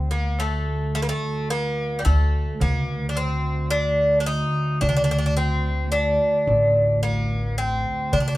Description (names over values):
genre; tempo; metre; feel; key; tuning
Turkish makam ensemble; 109 BPM (eighths); 10/8; straight; D makam hicaz; A4 = 436 Hz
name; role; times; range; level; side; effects
Greek bouzouki; melody; 0.0-8.4 s; G3 to Eb4; -23 LUFS; equal; none
upright bass; bass; 0.0-8.4 s; A1 to D3; -24 LUFS; equal; none
warm studio cello section; drone; 0.0-8.4 s; D2; -29 LUFS; right 1 dB; none
darbuka; percussion; 0.4-8.4 s; none; -27 LUFS; right 1 dB; none
room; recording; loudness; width
wet small room reverb, RT60 0.5 s; band playing live in one room; -20 LUFS; side -17 dB against mid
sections
0.0-8.4 A section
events
none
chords
none